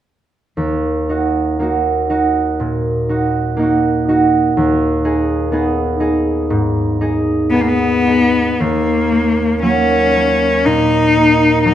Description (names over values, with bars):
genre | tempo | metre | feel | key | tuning
classical, romantic duo for cello and harp | 53-63 BPM | 4/4 | rubato | Eb minor | A4 = 439 Hz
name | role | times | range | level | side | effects
concert harp | accompaniment | 0.6-11.7 s | Eb2 to Ab4 | -15 LUFS | right 2 dB | none
clear cello | melody | 7.5-11.7 s | Bb3 to Eb4 | -13 LUFS | left 2 dB | none
room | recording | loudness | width
wet recital hall reverb, RT60 1.6 s | none | -13 LUFS | side -11 dB against mid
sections
0.6-8.6 A section; 8.6-11.7 B section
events
none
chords
0.6 Ebm; 4.6 Abm/Eb; 8.6 Ebm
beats
| 0.57 1.60 2.60 3.59 | 4.55 5.52 6.48 7.50 | 8.59 9.62 10.64 11.64